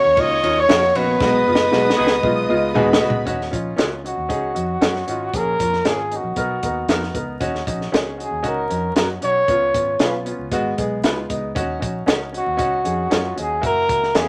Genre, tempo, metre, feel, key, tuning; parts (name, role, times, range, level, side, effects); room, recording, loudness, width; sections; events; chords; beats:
uptempo 1960s-style soul; 116 BPM; 4/4; straight; Eb minor; A4 = 440 Hz
breathy trumpet; melody; 0.0-14.3 s; Gb4 to Eb5; -22 LUFS; equal
vibraphone with soft mallets; second line; 0.0-3.0 s; Cb4 to Eb4; -31 LUFS; equal
warm studio violin section; second line; 0.0-3.3 s; B4 to D#6; -28 LUFS; equal
clear concert grand piano; accompaniment; 0.0-14.3 s; G#3 to A#4; -26 LUFS; equal
vintage muted fingered electric bass; bass; 0.0-14.3 s; F#1 to Gb2; -32 LUFS; equal
compact cocktail drum kit; drums; 0.2-14.3 s; hi-hat, kick drum, ride cymbal, snare drum, toms; -24 LUFS; equal
electric guitar through a small old amp; stabs; 0.7-14.3 s; Db4 to B4; -29 LUFS; equal
warm saxophone section; second line; 1.2-2.1 s; D#3 to G#4; -28 LUFS; equal
moderate club reverb, RT60 0.8 s; vinyl crackle; -20 LUFS; mono
0.0-3.3 A section; 3.3-14.3 B section
drum fill 1.2-3.3; band accent 1.2-3.3
0.0 Ebm7; 1.2 B6; 3.3 Ebm7; 5.3 Bbm7; 6.4 Bmaj7; 7.4 Ebm7; 9.5 Db7; 10.5 Abm7; 11.6 Ebm7; 13.6 Gb7
0.18 0.69 | 1.21 1.72 2.23 2.75 | 3.27 3.78 4.30 4.82 | 5.33 5.85 6.37 6.89 | 7.41 7.93 8.45 8.96 | 9.48 10.00 10.52 11.04 | 11.56 12.07 12.59 13.11 | 13.63 14.15